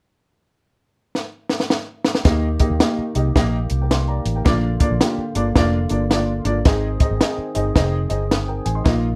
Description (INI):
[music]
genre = uptempo 1960s-style soul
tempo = 109 BPM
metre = 4/4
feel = swing 63% on 8ths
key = Eb major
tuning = A4 = 440 Hz
[part]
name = compact cocktail drum kit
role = drums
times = 1.1-9.0 s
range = hi-hat, kick drum, snare drum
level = -20 LUFS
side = equal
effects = none
[part]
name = warm upright piano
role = accompaniment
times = 2.2-9.2 s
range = Ab2 to C6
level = -25 LUFS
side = equal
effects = none
[part]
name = tonewheel organ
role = sustained chords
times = 2.3-9.2 s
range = D3 to Ab4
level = -32 LUFS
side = equal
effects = overdrive, chorus vibrato, slow rotary speaker
[part]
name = vintage muted fingered electric bass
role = bass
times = 2.3-9.2 s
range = F1 to Eb2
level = -24 LUFS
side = equal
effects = none
[sound]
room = light reverb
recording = dark, warm production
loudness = -20 LUFS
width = mono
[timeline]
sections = 0.0-2.3 A section; 2.3-9.2 B section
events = drum fill 1.2-2.3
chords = 0.0 N.C.; 2.3 Eb; 4.5 Bb; 6.7 Ab